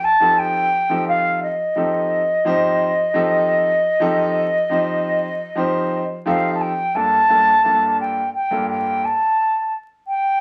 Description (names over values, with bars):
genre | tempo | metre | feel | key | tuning
progressive instrumental, progressive | 173 BPM (eighths) | 11/8 | straight | unclear | A4 = 439 Hz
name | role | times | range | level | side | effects
mellow concert flute | melody | 0.0-10.4 s | Eb5 to A5 | -19 LUFS | equal | none
clear baby grand piano | accompaniment | 0.2-9.0 s | G2 to C5 | -26 LUFS | equal | none
room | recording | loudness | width
wet studio reverb, RT60 0.6 s | vinyl crackle | -19 LUFS | mono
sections
0.0-7.0 A section; 7.0-10.4 B section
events
none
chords
0.0 F7; 7.0 Gm7; 9.0 A7(no3)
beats
0.04 0.38 0.73 1.08 1.42 1.77 2.12 2.46 2.81 | 3.15 3.50 3.85 4.19 4.54 4.88 5.23 5.58 5.92 6.27 6.61 | 6.96 7.31 7.65 8.00 8.34 8.69 9.04 9.38 9.73 10.07